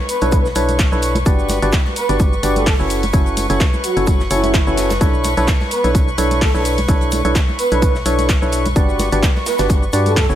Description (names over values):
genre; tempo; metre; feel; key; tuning
piano house; 128 BPM; 4/4; swing 55% on 16ths; B minor; A4 = 439 Hz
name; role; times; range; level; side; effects
warm studio violin section; sustained chords; 0.0-10.4 s; B4 to C#6; -26 LUFS; left 1 dB; sidechain pumping
breathy flute-like synth lead; melody; 0.1-10.2 s; E4 to B4; -22 LUFS; right 2 dB; ensemble chorus, digital delay
gated 80s drum kit; drums; 0.1-10.3 s; hi-hat, shaker, snare drum; -31 LUFS; left 1 dB; sidechain pumping on hats, high-pass filter on hats, high-pass filter on snare, sidechain pumping on perc, high-pass filter on perc, high-pass filter on room
punchy analog drum machine; drums; 0.1-10.4 s; handclaps, hi-hat, shaker; -25 LUFS; equal; none
tambourine and congas; percussion; 0.1-10.4 s; none; -29 LUFS; equal; none
percussive organ stab; riff; 0.2-10.4 s; C#4 to D5; -20 LUFS; equal; chorus, sidechain pumping, digital delay
organ-like FM bass; bass; 0.2-10.4 s; F#1 to G2; -20 LUFS; equal; tube saturation, sidechain pumping
electronic kick drum; drums; 0.3-10.3 s; none; -16 LUFS; equal; none
room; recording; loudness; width
small room reverb; none; -14 LUFS; side -11 dB against mid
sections
0.0-10.4 A section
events
none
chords
0.0 Bm11; 1.3 Gmaj7; 2.9 F#m7; 5.0 Bm11; 8.8 Gmaj7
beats
0.32 0.79 | 1.26 1.73 2.20 2.67 | 3.13 3.60 4.07 4.54 | 5.01 5.48 5.95 6.42 | 6.88 7.35 7.82 8.29 | 8.76 9.23 9.70 10.17